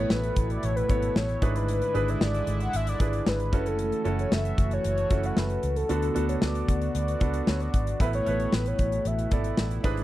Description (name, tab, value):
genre	1980s-style pop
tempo	114 BPM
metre	4/4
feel	straight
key	A major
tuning	A4 = 440 Hz
part	mellow horn-like synth lead	melody	0.0-9.9 s	A4 to F#5	-31 LUFS	left 1 dB	chorus, slapback echo
part	clear concert grand piano	accompaniment	0.0-10.0 s	G#2 to D5	-33 LUFS	right 4 dB	none
part	sweeping resonant pad	sustained chords	0.0-10.0 s	B2 to F#4	-34 LUFS	equal	chorus
part	vintage muted fingered electric bass	bass	0.0-10.0 s	F#1 to D2	-29 LUFS	equal	none
part	modern studio drum kit	drums	0.1-10.0 s	hi-hat, kick drum, snare drum	-27 LUFS	equal	none
room	studio ambience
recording	dry, close 1970s-style studio recording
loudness	-24 LUFS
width	side -15 dB against mid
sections	0.0-10.0 A section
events	none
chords	0.0 Asus2; 1.4 E7/G#; 3.5 F#m7; 5.9 D6; 8.0 Asus2